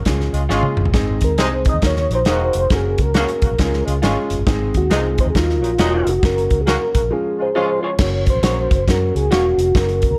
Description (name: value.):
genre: uptempo 1960s-style soul.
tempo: 136 BPM.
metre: 4/4.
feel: swing 63% on 8ths.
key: unclear.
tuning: A4 = 440 Hz.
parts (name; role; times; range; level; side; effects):
vintage muted fingered electric bass; bass; 0.0-10.2 s; Fb1 to Gb2; -23 LUFS; equal; none.
clear upright piano; accompaniment; 0.1-10.1 s; F3 to F5; -27 LUFS; equal; none.
natural country drum kit; drums; 0.1-10.1 s; crash cymbal, hi-hat, kick drum, snare drum, toms; -22 LUFS; equal; none.
warm horn section; second line; 0.3-7.9 s; Bb2 to Gb4; -28 LUFS; equal; none.
electric guitar through a small old amp; stabs; 0.5-9.5 s; F4 to Eb5; -29 LUFS; equal; analog chorus.
percussive tonewheel organ; melody; 1.2-10.2 s; F4 to Eb5; -22 LUFS; equal; chorus vibrato, slow rotary speaker.
room: little or no reverb.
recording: none.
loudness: -17 LUFS.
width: mono.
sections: 0.0-8.0 A section; 8.0-10.2 B section.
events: drum fill 0.5-0.9; break 7.1-8.0.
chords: 0.1 Db; 0.9 Ab; 1.8 Ebm; 2.7 Gb; 3.6 Db; 4.5 Ab; 5.3 Ebm; 6.2 Gb; 7.1 Db; 8.0 Gb.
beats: 0.06 0.50 | 0.94 1.38 1.82 2.26 | 2.70 3.14 3.58 4.03 | 4.46 4.91 5.35 5.79 | 6.23 6.67 7.11 7.55 | 7.99 8.43 8.87 9.31 | 9.75 10.19.